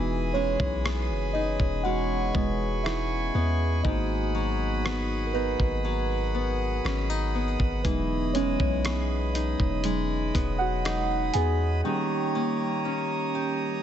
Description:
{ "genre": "contemporary R&B", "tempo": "60 BPM", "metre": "4/4", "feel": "straight", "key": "unclear", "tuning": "A4 = 440 Hz", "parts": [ { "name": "muted felt-like synth keys", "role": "accompaniment", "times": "0.0-13.8 s", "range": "F#3 to G#5", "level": "-29 LUFS", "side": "right 2 dB", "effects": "chorus, phaser" }, { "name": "pipe organ, foundations", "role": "sustained chords", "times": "0.0-13.8 s", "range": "G4 to D#6", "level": "-33 LUFS", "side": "right 1 dB", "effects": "none" }, { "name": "nylon-string guitar", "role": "arpeggios", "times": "0.0-13.8 s", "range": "G#2 to G4", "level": "-33 LUFS", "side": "left 6 dB", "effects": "ping-pong delay" }, { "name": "long sustained 808-style bass", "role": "bass", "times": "0.0-11.8 s", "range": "E1 to E2", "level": "-29 LUFS", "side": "equal", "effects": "none" }, { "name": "dusty soul sampler-style drum kit", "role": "drums", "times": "0.6-11.6 s", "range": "hi-hat, kick drum, rim click", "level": "-30 LUFS", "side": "equal", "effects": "vintage 12-bit sampler grit" } ], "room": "digital ambience", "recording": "nothing above 8.0 kHz", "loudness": "-24 LUFS", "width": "side -10 dB against mid", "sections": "0.0-13.8 A section", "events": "synth keys solo 0.0-13.8", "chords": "0.0 Emaj7; 3.8 G#m7; 7.8 Emaj7; 11.8 D#7", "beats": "0.85 1.85 2.85 | 3.85 4.85 5.85 6.85 | 7.85 8.85 9.85 10.85 | 11.85 12.85" }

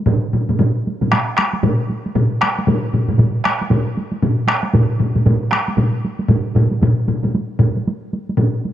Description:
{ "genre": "japanese traditional, taiko drum ensemble", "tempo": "116 BPM", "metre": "4/4", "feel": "swing 60% on 16ths", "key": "none", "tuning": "none", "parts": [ { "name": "solo taiko drums", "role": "percussion", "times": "0.1-8.7 s", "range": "none", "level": "-22 LUFS", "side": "right 2 dB", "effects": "none" }, { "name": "solo taiko drums", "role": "percussion", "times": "0.1-8.5 s", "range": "none", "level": "-18 LUFS", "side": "left 4 dB", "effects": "none" }, { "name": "taiko ensemble", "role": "percussion", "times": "0.1-8.5 s", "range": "none", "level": "-19 LUFS", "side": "right 4 dB", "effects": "none" } ], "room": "light reverb", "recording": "dry, close 1970s-style studio recording", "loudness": "-15 LUFS", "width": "side -12 dB against mid", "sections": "0.0-8.7 A section", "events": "none", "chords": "none", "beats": "| 0.07 0.59 1.11 1.63 | 2.15 2.67 3.19 3.71 | 4.23 4.75 5.27 5.79 | 6.31 6.83 7.34 7.86 | 8.38" }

